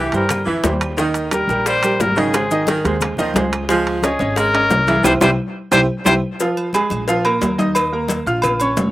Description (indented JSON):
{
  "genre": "latin, salsa",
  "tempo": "177 BPM",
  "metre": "4/4",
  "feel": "straight",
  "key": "unclear",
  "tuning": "A4 = 440 Hz",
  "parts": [
    { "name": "clear trumpet", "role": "melody", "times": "0.0-6.1 s", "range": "G4 to C5", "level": "-18 LUFS", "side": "left 2 dB", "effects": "none" },
    { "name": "bright saxophone section", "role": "second line", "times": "0.0-6.1 s", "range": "C3 to Ab3", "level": "-22 LUFS", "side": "right 1 dB", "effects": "none" },
    { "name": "clear baby grand piano", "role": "accompaniment", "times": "0.0-8.9 s", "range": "Eb3 to F6", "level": "-20 LUFS", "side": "right 2 dB", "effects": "none" },
    { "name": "upright bass", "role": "bass", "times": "0.0-8.9 s", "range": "F1 to G2", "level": "-24 LUFS", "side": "equal", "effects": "none" },
    { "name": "bongos and cowbell", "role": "percussion", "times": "0.1-8.9 s", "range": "none", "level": "-25 LUFS", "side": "left 4 dB", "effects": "none" },
    { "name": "congas", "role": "percussion", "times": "0.1-8.9 s", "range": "none", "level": "-25 LUFS", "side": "left 2 dB", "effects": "none" },
    { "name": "maracas", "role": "percussion", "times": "0.1-8.9 s", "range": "none", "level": "-30 LUFS", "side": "left 6 dB", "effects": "none" },
    { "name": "timbales and agogo bells", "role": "percussion", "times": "0.1-8.9 s", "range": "none", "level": "-22 LUFS", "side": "right 2 dB", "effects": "none" },
    { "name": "claves", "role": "percussion", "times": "0.3-8.6 s", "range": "none", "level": "-32 LUFS", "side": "right 4 dB", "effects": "none" }
  ],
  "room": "little or no reverb",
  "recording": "recorded outdoors, with no room sound",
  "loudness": "-15 LUFS",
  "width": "side -16 dB against mid",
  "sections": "0.0-6.4 A section; 6.4-8.9 B section",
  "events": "drum fill 5.0-6.4; band accent 5.0-6.4",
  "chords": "0.0 C; 1.0 Eb; 2.3 Ab; 3.7 Dbadd9; 5.0 C; 6.4 Fm; 7.1 Bb5"
}